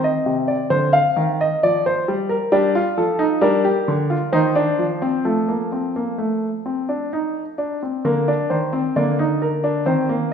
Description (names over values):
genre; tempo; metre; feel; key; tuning
classical, baroque-style 3-part fugue for grand piano; 66 BPM; 3/4; straight; Bb major; A4 = 440 Hz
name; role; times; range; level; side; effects
warm grand piano; solo; 0.0-10.3 s; C3 to F5; -17 LUFS; equal; none
room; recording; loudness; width
wet recital hall reverb, RT60 1.7 s; recorded in a church or concert hall; -17 LUFS; side -7 dB against mid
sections
0.0-8.0 A section; 8.0-10.3 B section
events
none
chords
0.0 Cm; 1.6 F5; 2.5 Gm; 4.3 Cm/Eb; 5.2 F; 8.0 Bb/D